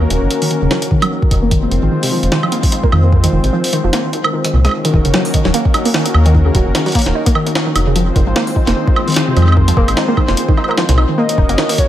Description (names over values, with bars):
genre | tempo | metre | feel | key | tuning
IDM | 149 BPM | 4/4 | swing 56% on 16ths | Eb dorian | A4 = 440 Hz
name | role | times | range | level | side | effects
warm analog pad | sustained chords | 0.0-11.9 s | Eb3 to C5 | -19 LUFS | left 2 dB | lush chorus
warbly dusty pluck | arpeggios | 0.0-11.7 s | Bb2 to Eb4 | -18 LUFS | right 1 dB | chorus, diffuse ambient delay
metallic FM bass | bass | 0.0-11.6 s | Eb1 to F2 | -13 LUFS | equal | none
jungle sampler-style drum kit | drums | 0.1-11.9 s | hi-hat, rim click, snare drum, woodblock | -19 LUFS | right 1 dB | studio reverb, diffuse ambient delay
electronic kick drum | drums | 0.9-11.9 s | none | -14 LUFS | equal | overdrive, studio reverb
warm velvety synth lead | melody | 11.2-11.9 s | Db5 to Eb5 | -19 LUFS | left 1 dB | chorus, diffuse ambient delay
room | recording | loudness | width
moderate plate reverb, RT60 1.5 s | dreamy mix soaked in reverb | -11 LUFS | side -12 dB against mid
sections
0.0-4.7 A section; 4.7-11.9 B section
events
filter sweep on synth arpeggio sound 0.0-4.7; kick drops out 3.9-4.7; drum fill 4.4-4.7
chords
0.0 Ebm7; 1.5 Fm7; 4.7 Ebm7; 8.0 Fm7; 11.2 Ebm7